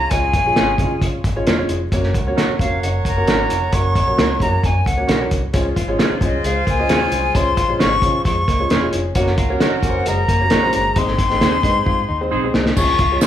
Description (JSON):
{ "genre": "uptempo 1960s-style soul", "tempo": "133 BPM", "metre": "4/4", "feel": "straight", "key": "Db major", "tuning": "A4 = 437 Hz", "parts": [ { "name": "bright silver concert flute", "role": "melody", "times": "0.0-13.3 s", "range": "Eb5 to Db6", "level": "-20 LUFS", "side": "left 2 dB", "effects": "none" }, { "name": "warm horn section", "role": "second line", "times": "0.0-12.5 s", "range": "C4 to Db5", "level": "-27 LUFS", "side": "right 2 dB", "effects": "none" }, { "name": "vintage muted fingered electric bass", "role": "bass", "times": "0.0-13.2 s", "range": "Fb1 to Db3", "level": "-23 LUFS", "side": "equal", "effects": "none" }, { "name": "warm upright piano", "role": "accompaniment", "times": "0.1-13.3 s", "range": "Ab3 to F5", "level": "-24 LUFS", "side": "equal", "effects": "none" }, { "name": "cloth-damped thuddy drum kit", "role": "drums", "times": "0.1-13.3 s", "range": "crash cymbal, hi-hat, kick drum, snare drum", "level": "-19 LUFS", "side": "equal", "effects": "none" }, { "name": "semi-hollow electric guitar", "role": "stabs", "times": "0.6-13.3 s", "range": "C4 to Db5", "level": "-25 LUFS", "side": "right 5 dB", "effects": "none" }, { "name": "electric guitar through a small old amp", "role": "riff", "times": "5.5-13.3 s", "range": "Ab3 to Gb4", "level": "-28 LUFS", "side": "left 4 dB", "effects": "none" }, { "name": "tambourine", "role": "percussion", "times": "12.8-13.3 s", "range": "none", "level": "-30 LUFS", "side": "right 6 dB", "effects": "none" } ], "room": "moderate large studio reverb, RT60 1.1 s", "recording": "band playing live in one room, vinyl crackle", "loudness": "-15 LUFS", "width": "side -10 dB against mid", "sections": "0.0-12.8 A section", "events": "drum fill 11.9-12.8", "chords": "0.0 Db; 1.9 Gb; 5.5 Db; 9.2 Gb; 11.0 Ab", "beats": "| 0.12 0.57 1.02 1.47 | 1.92 2.37 2.83 3.28 | 3.73 4.18 4.63 5.08 | 5.54 5.99 6.44 6.89 | 7.35 7.80 8.25 8.70 | 9.16 9.61 10.06 10.51 | 10.96 11.42 11.87 12.32 | 12.77 13.23" }